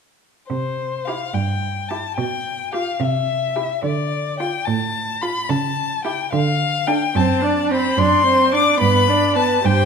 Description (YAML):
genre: quick classical-period movement for string quartet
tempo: 72 BPM (dotted quarters)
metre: 6/8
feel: rubato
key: C major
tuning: A4 = 441 Hz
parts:
  - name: rich violin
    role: melody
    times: 0.5-9.9 s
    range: C5 to D6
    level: -20 LUFS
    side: left 6 dB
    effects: none
  - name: rich cello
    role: bass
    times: 0.5-9.9 s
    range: F#2 to D3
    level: -23 LUFS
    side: right 4 dB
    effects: none
  - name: rich violin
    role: second line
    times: 1.1-9.9 s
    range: F4 to D5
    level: -23 LUFS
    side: equal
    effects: none
  - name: rich viola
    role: accompaniment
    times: 1.1-9.9 s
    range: B3 to G4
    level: -23 LUFS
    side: right 4 dB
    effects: none
room: wet recital hall reverb, RT60 1.6 s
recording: minimal, uncompressed stereo recording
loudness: -17 LUFS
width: side -6 dB against mid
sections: 0.5-9.9 A section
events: none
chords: 0.5 C; 2.2 G7/B; 3.0 C; 3.8 Dm; 5.5 A7/C#; 6.3 Dm; 7.2 D7/F#; 8.8 G